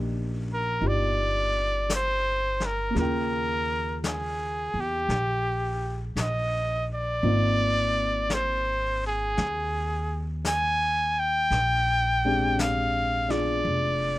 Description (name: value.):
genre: jazz ballad.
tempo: 56 BPM.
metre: 4/4.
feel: swing 68% on 8ths.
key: Eb major.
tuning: A4 = 439 Hz.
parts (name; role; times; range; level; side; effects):
warm grand piano; accompaniment; 0.0-14.2 s; Db3 to G5; -31 LUFS; left 1 dB; none.
upright bass; bass; 0.0-14.2 s; F1 to Fb2; -30 LUFS; equal; none.
clear trumpet; melody; 0.5-14.2 s; G4 to Ab5; -26 LUFS; equal; none.
vintage brush drum kit; drums; 0.8-14.2 s; brushed snare drum, hi-hat, snare drum; -35 LUFS; left 3 dB; none.
room: little or no reverb.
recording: close, detailed microphones.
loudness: -24 LUFS.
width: side -16 dB against mid.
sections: 0.0-14.2 A section.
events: none.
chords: 0.0 Cm9; 3.0 Eb9; 7.2 Ab6; 11.5 Bb13.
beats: 0.83 1.90 | 2.96 4.03 5.10 6.17 | 7.24 8.31 9.38 10.45 | 11.52 12.59 13.65.